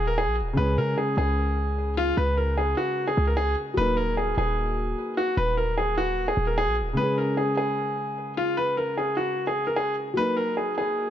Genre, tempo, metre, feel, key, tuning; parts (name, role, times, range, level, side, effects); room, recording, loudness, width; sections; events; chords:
hip hop, trap; 150 BPM; 4/4; half-time; A4 = 440 Hz
clear grand piano; melody; 0.0-11.1 s; F4 to Cb5; -25 LUFS; equal; low-pass filter, ping-pong delay
warm 808-style bass; bass; 0.0-7.0 s; Eb1 to Db3; -26 LUFS; equal
felt-muted upright piano; accompaniment; 0.5-11.1 s; Db3 to Bb4; -31 LUFS; left 1 dB; low-pass filter
light reverb, studio ambience; -23 LUFS; side -10 dB against mid
0.0-7.0 A section; 7.0-11.1 B section
0.0 Eb5; 0.6 Db5; 3.8 Ebm; 7.0 Db5; 10.2 Ebm